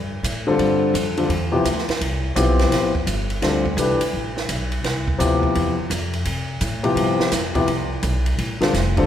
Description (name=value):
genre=modal jazz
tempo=169 BPM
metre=4/4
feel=swing 64% on 8ths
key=G mixolydian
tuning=A4 = 442 Hz
part: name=upright bass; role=bass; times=0.0-9.1 s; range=F1 to C3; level=-24 LUFS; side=equal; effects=none
part: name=compact cocktail drum kit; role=drums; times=0.2-9.0 s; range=hi-hat, kick drum, ride cymbal, snare drum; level=-26 LUFS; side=right 2 dB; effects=none
part: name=warm concert grand piano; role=accompaniment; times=0.5-9.1 s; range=C3 to B4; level=-20 LUFS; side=left 2 dB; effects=none
room=moderate concert hall reverb, RT60 2.1 s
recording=recorded in a church or concert hall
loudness=-18 LUFS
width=side -10 dB against mid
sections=0.0-9.1 A section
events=none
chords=0.0 G13sus4